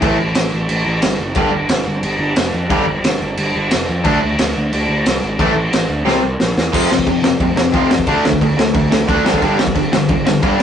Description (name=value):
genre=punk rock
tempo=179 BPM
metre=4/4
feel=straight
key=D minor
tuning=A4 = 440 Hz
part: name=distorted electric guitar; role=riff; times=0.0-10.6 s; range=F2 to D4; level=-19 LUFS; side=left 5 dB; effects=overdrive
part: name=overdriven electric guitar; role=riff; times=0.0-10.6 s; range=F2 to D4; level=-17 LUFS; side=right 2 dB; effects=none
part: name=fuzz picked electric bass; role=bass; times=0.0-10.5 s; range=F1 to F2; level=-21 LUFS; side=equal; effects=overdrive
part: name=raw garage drum kit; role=drums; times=0.0-10.6 s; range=crash cymbal, kick drum, snare drum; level=-16 LUFS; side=equal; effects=none
room=light reverb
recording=rough rehearsal-room recording, warm saturation, nothing above 10.3 kHz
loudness=-13 LUFS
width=side -8 dB against mid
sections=0.0-6.7 A section; 6.7-10.6 B section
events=half time 0.0-6.7; drum fill 6.1-6.7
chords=0.0 A5; 1.4 G5; 4.1 D5; 5.4 A5; 6.1 C; 6.7 F5; 8.1 D5; 9.3 G5